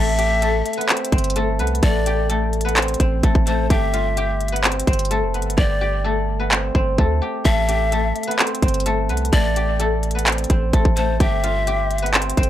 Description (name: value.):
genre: hip hop, trap.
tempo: 128 BPM.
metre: 4/4.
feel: half-time.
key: A minor.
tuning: A4 = 440 Hz.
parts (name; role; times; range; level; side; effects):
guzheng; melody; 0.0-12.5 s; A3 to G5; -23 LUFS; left 2 dB; low-pass filter, analog delay.
breathy polished pan flute; second line; 0.0-12.1 s; C5 to E5; -25 LUFS; left 2 dB; analog delay.
long sustained 808-style bass; bass; 0.0-12.5 s; F1 to D2; -22 LUFS; equal; none.
trap drum kit; drums; 0.2-12.5 s; handclaps, hi-hat, kick drum; -19 LUFS; equal; none.
room: little or no reverb.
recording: dry, gritty hardware recording.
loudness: -17 LUFS.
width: side -12 dB against mid.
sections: 0.0-12.5 A section.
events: hi-hats muted 5.6-7.5.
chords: 0.0 Am; 3.7 Gsus4; 7.5 Am; 11.2 Gsus4.